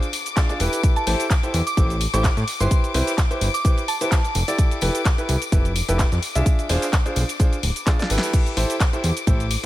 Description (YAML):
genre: piano house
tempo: 128 BPM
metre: 4/4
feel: swing 55% on 16ths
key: A minor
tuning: A4 = 440 Hz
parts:
  - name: dark chamber string section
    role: sustained chords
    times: 0.0-9.7 s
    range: D6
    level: -30 LUFS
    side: left 7 dB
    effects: sidechain pumping
  - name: bright grand piano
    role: riff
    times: 0.0-9.7 s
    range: D4 to E5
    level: -26 LUFS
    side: equal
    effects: sidechain pumping, ping-pong delay
  - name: house drum kit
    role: drums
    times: 0.0-9.6 s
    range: crash cymbal, handclaps, hi-hat, shaker, snare drum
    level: -27 LUFS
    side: left 1 dB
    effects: none
  - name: soft-mallet drum kit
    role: drums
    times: 0.1-9.6 s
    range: ride cymbal, snare drum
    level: -36 LUFS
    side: left 1 dB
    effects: sidechain pumping on cymbals, high-pass filter on cymbals, high-pass filter on snare, high-pass filter on room
  - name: tambourine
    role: percussion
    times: 0.1-9.7 s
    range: none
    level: -37 LUFS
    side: right 4 dB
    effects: none
  - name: electronic kick drum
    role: drums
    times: 0.4-9.4 s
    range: none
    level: -18 LUFS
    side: equal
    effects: none
  - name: fat analog bass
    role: bass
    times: 0.6-9.6 s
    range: D1 to A2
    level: -22 LUFS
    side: equal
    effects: sidechain pumping
  - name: soft synth bell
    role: melody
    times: 1.0-4.4 s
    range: A5 to D6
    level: -28 LUFS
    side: right 2 dB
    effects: chorus, ping-pong delay
room: small room ambience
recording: none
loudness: -18 LUFS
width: side -15 dB against mid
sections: 0.0-8.3 A section; 8.3-9.7 A section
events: drop 0.0-8.3, 8.3-9.7; drum fill 7.9-8.3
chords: 0.0 E7b9; 0.8 Am7; 2.7 Cmaj7; 4.3 Fmaj9#11; 6.5 E7b9b13; 8.3 Am7